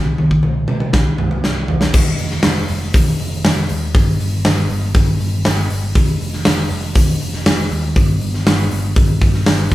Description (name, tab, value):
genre	quiet-loud alternative rock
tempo	120 BPM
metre	4/4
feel	straight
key	unclear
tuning	A4 = 440 Hz
part	hollow-body short-scale picked electric bass	bass	0.0-9.7 s	F1 to C3	-20 LUFS	equal	none
part	big rock drum kit	drums	0.2-9.7 s	crash cymbal, hi-hat, kick drum, snare drum, toms	-14 LUFS	equal	none
room	light reverb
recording	band playing live in one room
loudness	-14 LUFS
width	side -16 dB against mid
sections	0.0-1.9 A section; 1.9-9.7 B section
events	drum fill 0.0-1.9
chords	none